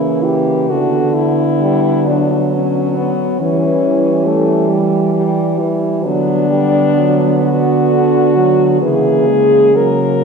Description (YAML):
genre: classical, lyrical piece for horn quartet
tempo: 66 BPM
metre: 3/4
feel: uneven beats, rubato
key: B minor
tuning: A4 = 440 Hz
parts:
  - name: warm French horn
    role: melody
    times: 0.0-10.2 s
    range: B3 to A#4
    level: -15 LUFS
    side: left 2 dB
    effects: none
  - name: mellow French horn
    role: second line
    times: 0.0-10.2 s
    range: G3 to B3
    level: -19 LUFS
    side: right 6 dB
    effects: none
  - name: mellow French horn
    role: accompaniment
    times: 0.0-10.2 s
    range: D3 to A3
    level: -18 LUFS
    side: left 1 dB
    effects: none
  - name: mellow French horn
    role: bass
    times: 0.0-10.2 s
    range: C#3 to E3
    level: -18 LUFS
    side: right 2 dB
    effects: none
room: wet concert hall reverb, RT60 1.9 s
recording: heard from further back in the room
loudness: -11 LUFS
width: side -5 dB against mid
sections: 0.0-10.2 A section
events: none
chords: 0.0 C#dim7; 0.7 Bm/D; 3.4 C#dim/E; 6.1 Bm/D; 8.8 C#m6